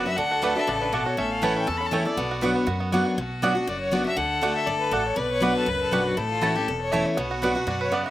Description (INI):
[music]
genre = bluegrass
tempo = 240 BPM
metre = 4/4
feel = swing 54% on 8ths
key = B minor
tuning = A4 = 441 Hz
[part]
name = bluegrass banjo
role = melody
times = 0.0-3.2, 7.2-8.1 s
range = B3 to B4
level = -29 LUFS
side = right 4 dB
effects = slapback echo
[part]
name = clear fiddle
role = melody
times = 0.0-8.1 s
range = E4 to B5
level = -29 LUFS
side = left 1 dB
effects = none
[part]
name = clear fiddle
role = second line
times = 0.0-8.1 s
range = F#4 to B4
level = -28 LUFS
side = left 3 dB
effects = slapback echo
[part]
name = picked steel-string acoustic guitar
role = accompaniment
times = 0.0-8.1 s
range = E2 to F#4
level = -27 LUFS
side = left 1 dB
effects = none
[part]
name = mandolin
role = stabs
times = 0.0-8.0 s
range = A3 to A5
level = -27 LUFS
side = right 4 dB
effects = none
[part]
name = upright bass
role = bass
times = 0.0-8.0 s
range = E1 to F#2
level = -35 LUFS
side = equal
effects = none
[sound]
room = little or no reverb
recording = recorded outdoors, with no room sound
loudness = -22 LUFS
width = side -14 dB against mid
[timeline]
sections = 0.0-3.2 A section; 3.2-8.1 A section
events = none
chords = 0.2 D; 1.2 A; 2.2 Bm; 4.2 D; 5.2 Bm; 6.2 A; 7.2 Bm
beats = | 0.18 0.43 0.68 0.93 | 1.18 1.43 1.68 1.93 | 2.18 2.43 2.68 2.93 | 3.18 3.43 3.68 3.93 | 4.18 4.43 4.68 4.92 | 5.17 5.42 5.67 5.92 | 6.17 6.42 6.67 6.92 | 7.17 7.42 7.67 7.92